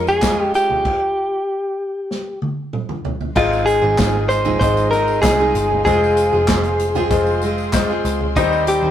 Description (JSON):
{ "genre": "piano-driven pop", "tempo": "96 BPM", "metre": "4/4", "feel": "straight", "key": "Ab major", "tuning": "A4 = 440 Hz", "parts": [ { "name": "direct-recorded clean electric guitar", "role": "melody", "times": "0.0-8.9 s", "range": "Eb4 to C5", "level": "-18 LUFS", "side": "equal", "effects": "none" }, { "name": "clear baby grand piano", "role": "accompaniment", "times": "0.0-8.9 s", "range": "Ab2 to C5", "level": "-22 LUFS", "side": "left 6 dB", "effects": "none" }, { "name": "warm studio string section", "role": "sustained chords", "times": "0.0-8.9 s", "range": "Ab3 to Db6", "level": "-29 LUFS", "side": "left 2 dB", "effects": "none" }, { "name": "picked steel-string acoustic guitar", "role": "riff", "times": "0.0-8.9 s", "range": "Ab2 to C5", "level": "-23 LUFS", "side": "right 4 dB", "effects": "none" }, { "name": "vintage muted picked electric bass", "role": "bass", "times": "0.0-8.9 s", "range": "F1 to F2", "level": "-23 LUFS", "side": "equal", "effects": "none" }, { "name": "tambourine", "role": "percussion", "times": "0.1-8.8 s", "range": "none", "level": "-39 LUFS", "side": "left 6 dB", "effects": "none" }, { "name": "unplugged drum kit", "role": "drums", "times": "0.2-8.8 s", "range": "crash cymbal, handclaps, hi-hat, kick drum, snare drum, toms", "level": "-22 LUFS", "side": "equal", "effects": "none" } ], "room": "moderate stone room reverb, RT60 1.3 s", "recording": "rough rehearsal-room recording, tube saturation", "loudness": "-15 LUFS", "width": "side -10 dB against mid", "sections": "0.0-3.4 A section; 3.4-8.9 B section", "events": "stop 0.9-3.4; drum fill 2.1-3.4", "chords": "0.0 Db/F; 0.9 N.C.; 3.4 Ab6; 5.9 Fm; 8.4 Cm/Eb" }